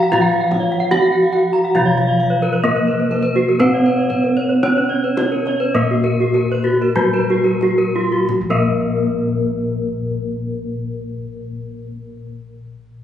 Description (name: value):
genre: Balinese gamelan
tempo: 43-78 BPM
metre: 4/4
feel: straight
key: Bb pelog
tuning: A4 = 441 Hz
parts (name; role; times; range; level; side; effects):
- gamelan-type bronze metallophone; melody; 0.0-12.4 s; Gb3 to Gb4; -19 LUFS; equal; none
- gamelan-type bronze metallophone; accompaniment; 0.0-12.4 s; F3 to Cb4+35c; -24 LUFS; right 1 dB; none
- gamelan-type bronze metallophone; arpeggios; 0.0-12.4 s; Gb4 to Gb5; -22 LUFS; left 3 dB; none
- gamelan-type bronze metallophone; arpeggios; 0.0-12.4 s; F4 to Bb5; -22 LUFS; right 2 dB; none
- gamelan-type bossed gongs; bass; 0.0-12.3 s; Bb1 to Cb5+35c; -25 LUFS; left 2 dB; none
- kendang; percussion; 0.1-9.0 s; none; -28 LUFS; left 1 dB; none
room: wet recital hall reverb, RT60 1.7 s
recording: recorded on a phone in the room, club reverb, compression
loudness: -15 LUFS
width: side -10 dB against mid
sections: 0.0-8.3 A section; 8.3-13.0 B section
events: slowing down 0.1-8.3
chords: none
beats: | 0.12 0.91 1.75 2.65 | 3.61 4.64 5.75 6.97 | 8.30 9.70 11.10